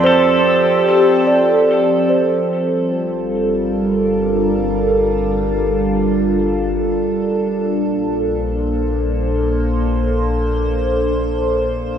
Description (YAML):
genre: ambient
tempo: free time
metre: none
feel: none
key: G minor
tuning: A4 = 441 Hz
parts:
  - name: pedal steel guitar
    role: melody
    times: 0.0-1.2 s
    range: A4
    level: -22 LUFS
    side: equal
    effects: tape echo
  - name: evolving wavetable pad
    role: sustained chords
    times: 0.0-12.0 s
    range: Bb2 to C5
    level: -16 LUFS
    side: equal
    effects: chorus, built-in reverb, phaser
  - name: large celesta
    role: arpeggios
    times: 0.0-2.9 s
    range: C5 to A5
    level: -17 LUFS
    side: right 3 dB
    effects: tape echo
  - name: deep rumbling drone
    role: bass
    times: 0.0-12.0 s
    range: G1 to F2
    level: -24 LUFS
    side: left 1 dB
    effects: built-in reverb
room: wet cathedral reverb, RT60 5.5 s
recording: none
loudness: -14 LUFS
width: side -8 dB against mid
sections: 0.0-2.5 A section; 2.5-12.0 B section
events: none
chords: 0.0 F; 2.5 Gm7; 7.4 Bbmaj7